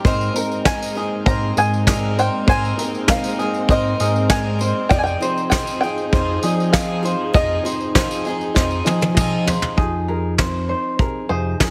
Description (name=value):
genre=indie folk with a building arrangement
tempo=99 BPM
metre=4/4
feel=straight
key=unclear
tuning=A4 = 440 Hz
part: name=bluegrass banjo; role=melody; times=0.0-11.7 s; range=C5 to Bb5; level=-25 LUFS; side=equal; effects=none
part: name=felt-muted upright piano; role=accompaniment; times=0.0-9.8 s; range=F1 to F5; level=-30 LUFS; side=equal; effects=none
part: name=picked twelve-string acoustic guitar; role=accompaniment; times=0.0-9.8 s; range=F3 to Bb4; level=-29 LUFS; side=equal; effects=none
part: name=tenor ukulele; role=arpeggios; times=0.0-11.7 s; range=Ab4 to Eb5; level=-28 LUFS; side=equal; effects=none
part: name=picked electric bass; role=bass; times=0.0-11.7 s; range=F2 to F3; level=-24 LUFS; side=equal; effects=none
part: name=soft brush drum kit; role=drums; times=0.0-11.7 s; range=kick drum, snare drum, toms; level=-20 LUFS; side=equal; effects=none
part: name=dark studio string section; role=sustained chords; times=0.1-9.7 s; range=F3 to Ab4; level=-30 LUFS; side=equal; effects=none
part: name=tambourine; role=percussion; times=0.1-9.7 s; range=none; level=-36 LUFS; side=equal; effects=none
part: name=fingerpicked steel-string acoustic guitar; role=accompaniment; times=9.8-11.7 s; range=C3 to Bb4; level=-29 LUFS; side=equal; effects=none
room=light reverb, studio reverb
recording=heavily compressed radio sound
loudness=-19 LUFS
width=mono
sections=0.0-9.8 A section; 9.8-11.7 B section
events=drum fill 8.6-9.8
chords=0.0 Abadd9; 4.9 Fm7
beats=| 0.04 0.65 1.26 1.87 | 2.48 3.09 3.69 4.30 | 4.91 5.52 6.13 6.73 | 7.34 7.95 8.56 9.16 | 9.77 10.38 10.99 11.60